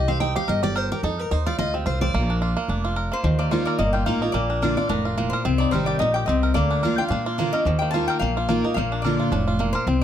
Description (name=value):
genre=bluegrass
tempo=217 BPM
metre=4/4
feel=swing 56% on 8ths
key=Bb major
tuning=A4 = 437 Hz
part: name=bluegrass banjo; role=melody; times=0.0-10.0 s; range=F3 to Bb4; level=-27 LUFS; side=right 4 dB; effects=tape echo
part: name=picked steel-string acoustic guitar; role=accompaniment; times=0.0-10.0 s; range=A2 to G5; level=-24 LUFS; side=left 1 dB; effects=none
part: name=upright bass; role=bass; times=0.0-10.0 s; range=F1 to Bb2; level=-25 LUFS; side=equal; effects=none
part: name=lap resonator guitar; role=melody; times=3.1-10.0 s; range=Bb4 to A5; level=-26 LUFS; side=left 2 dB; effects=none
room=little or no reverb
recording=close, detailed microphones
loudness=-20 LUFS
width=side -10 dB against mid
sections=0.0-3.2 A section; 3.2-10.0 B section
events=steel-string acoustic guitar solo 0.0-3.2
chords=0.0 Cm; 1.0 F5; 2.1 Bb; 3.2 Ebsus2; 4.3 Bb; 5.4 Cm; 6.6 Bb/D; 7.7 Ebsus2; 8.8 Bb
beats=0.21 0.48 0.76 | 1.03 1.31 1.58 1.86 | 2.14 2.41 2.69 2.96 | 3.24 3.52 3.79 4.07 | 4.34 4.62 4.89 5.17 | 5.45 5.72 6.00 6.28 | 6.55 6.83 7.11 7.38 | 7.66 7.94 8.21 8.49 | 8.77 9.04 9.32 9.60 | 9.87